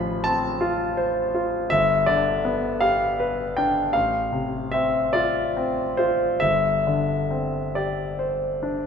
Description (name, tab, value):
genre	classical, romantic nocturne for solo piano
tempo	44-56 BPM (dotted quarters)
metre	12/8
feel	rubato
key	unclear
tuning	A4 = 437 Hz
part	clear concert grand piano	solo	0.0-8.9 s	G1 to C6	-21 LUFS	left 1 dB	none
room	wet scoring stage reverb, RT60 1.9 s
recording	none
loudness	-20 LUFS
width	side -6 dB against mid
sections	0.0-8.9 A section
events	none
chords	0.0 F/A; 1.7 G; 4.0 F/A; 6.4 Gsus4